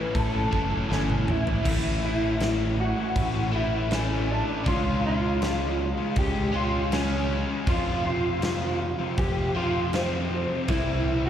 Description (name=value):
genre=quiet-loud alternative rock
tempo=80 BPM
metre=4/4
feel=straight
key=unclear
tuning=A4 = 440 Hz
part: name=electric guitar through a small old amp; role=melody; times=0.0-11.3 s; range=C4 to B4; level=-28 LUFS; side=equal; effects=ensemble chorus, slapback echo, analog delay
part: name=overdriven electric guitar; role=riff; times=0.0-11.3 s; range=F2 to C#4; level=-31 LUFS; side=equal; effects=none
part: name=thick fuzz guitar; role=riff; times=0.0-11.3 s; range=A2 to E#4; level=-34 LUFS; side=left 10 dB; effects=distortion, slapback echo
part: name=thick fuzz guitar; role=riff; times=0.0-1.6 s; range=A2 to E4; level=-33 LUFS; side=right 7 dB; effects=distortion, slapback echo
part: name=huge arena drum kit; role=drums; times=0.1-10.9 s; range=crash cymbal, kick drum, snare drum, toms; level=-30 LUFS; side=equal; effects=none
part: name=modern bright fingered electric bass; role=bass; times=0.2-11.3 s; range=F#1 to F2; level=-28 LUFS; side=equal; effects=none
room=little or no reverb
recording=live gig heard through the venue's PA, recital hall reverb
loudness=-23 LUFS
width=side -10 dB against mid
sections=0.0-1.7 A section; 1.7-11.3 A section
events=drum fill 0.9-1.7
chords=0.0 A; 4.7 C#; 7.7 F; 10.7 C